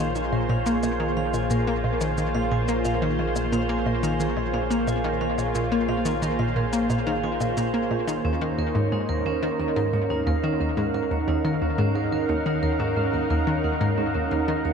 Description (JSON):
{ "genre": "ambient, sequencer-driven space music", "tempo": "89 BPM", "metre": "4/4", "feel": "straight", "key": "Bb minor, Eb dorian from 8.2 s", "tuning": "A4 = 440 Hz", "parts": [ { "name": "lush unison pad", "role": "sustained chords", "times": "0.0-14.7 s", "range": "Bb3 to Gb5", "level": "-28 LUFS", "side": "right 1 dB", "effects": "chorus" }, { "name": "vibraphone with hard mallets", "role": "arpeggios", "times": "0.0-14.7 s", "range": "Db4 to Ab5", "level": "-29 LUFS", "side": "right 2 dB", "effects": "auto-pan, tape echo" }, { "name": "analog pluck", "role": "riff", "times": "0.0-14.7 s", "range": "Eb2 to Bb3", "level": "-25 LUFS", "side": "left 1 dB", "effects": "chorus, tape echo" }, { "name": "warm sub bass", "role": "bass", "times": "0.0-14.7 s", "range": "Bb1 to Eb2", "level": "-34 LUFS", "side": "equal", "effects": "none" }, { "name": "shaker and woodblock", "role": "percussion", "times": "0.2-8.2 s", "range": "none", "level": "-41 LUFS", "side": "left 4 dB", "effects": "tape echo" } ], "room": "moderate huge ambient reverb, RT60 9.1 s", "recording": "dark, warm production", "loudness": "-22 LUFS", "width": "side -6 dB against mid", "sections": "0.0-8.2 A section; 8.2-14.7 B section", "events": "none", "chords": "0.0 Bbm7; 8.2 Ebm7" }